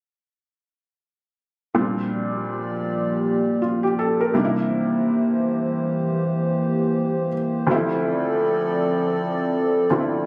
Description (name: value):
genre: R&B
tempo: 81 BPM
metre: 4/4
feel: swing 58% on 16ths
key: unclear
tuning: A4 = 440 Hz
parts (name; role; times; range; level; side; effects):
- felt-muted upright piano; accompaniment; 1.7-10.3 s; D2 to Bb4; -26 LUFS; equal; none
- hollow soft pad; sustained chords; 2.1-10.3 s; E3 to D5; -24 LUFS; equal; chorus
room: moderate concert hall reverb, RT60 1.9 s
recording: recorded on a phone in the room, club reverb, compression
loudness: -22 LUFS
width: mono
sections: 1.8-10.3 A section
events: none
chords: 1.8 Bb6; 4.3 C7; 7.7 Dm7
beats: | 1.76 2.50 3.24 3.98 | 4.72 5.46 6.20 6.94 | 7.68 8.42 9.16 9.90